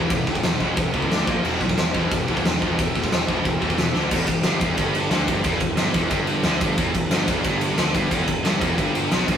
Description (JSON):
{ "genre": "heavy metal", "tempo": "180 BPM", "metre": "4/4", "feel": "straight", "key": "E minor", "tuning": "A4 = 440 Hz", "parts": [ { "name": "high-gain distorted guitar", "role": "riff", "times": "0.0-9.4 s", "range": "E2 to D4", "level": "-28 LUFS", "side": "left 5 dB", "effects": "distortion" }, { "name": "high-gain distorted guitar", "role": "riff", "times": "0.0-9.4 s", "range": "E2 to E4", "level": "-30 LUFS", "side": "equal", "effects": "distortion" }, { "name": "scooped high-gain guitar", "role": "riff", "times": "0.0-9.4 s", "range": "E2 to D4", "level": "-28 LUFS", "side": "right 4 dB", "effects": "distortion" }, { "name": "fuzz picked electric bass", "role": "bass", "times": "0.0-9.4 s", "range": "E1 to D2", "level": "-27 LUFS", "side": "equal", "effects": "overdrive" }, { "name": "big rock drum kit", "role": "drums", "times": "0.1-9.4 s", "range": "crash cymbal, kick drum, ride cymbal, snare drum", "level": "-22 LUFS", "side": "equal", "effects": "none" } ], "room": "moderate studio reverb, RT60 0.6 s", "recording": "rough rehearsal-room recording, warm saturation", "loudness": "-19 LUFS", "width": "side -8 dB against mid", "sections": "0.0-4.1 A section; 4.1-9.4 B section", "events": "drum fill 3.9", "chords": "0.0 Em; 1.1 D5; 1.3 A#5; 1.4 Em; 3.9 D5; 4.1 Em" }